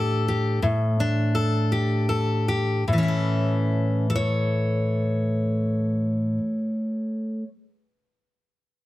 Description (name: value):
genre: folk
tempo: 49-59 BPM (dotted quarters)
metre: 6/8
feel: straight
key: A mixolydian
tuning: A4 = 440 Hz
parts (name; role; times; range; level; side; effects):
- fingerpicked steel-string acoustic guitar; accompaniment; 0.0-7.5 s; A2 to C#5; -22 LUFS; equal; none
room: light reverb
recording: heavily compressed radio sound, multiband compression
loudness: -22 LUFS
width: side -16 dB against mid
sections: 0.0-2.9 A section; 2.9-7.8 B section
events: slowing down 0.0-2.9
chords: 0.0 A7sus4; 2.9 A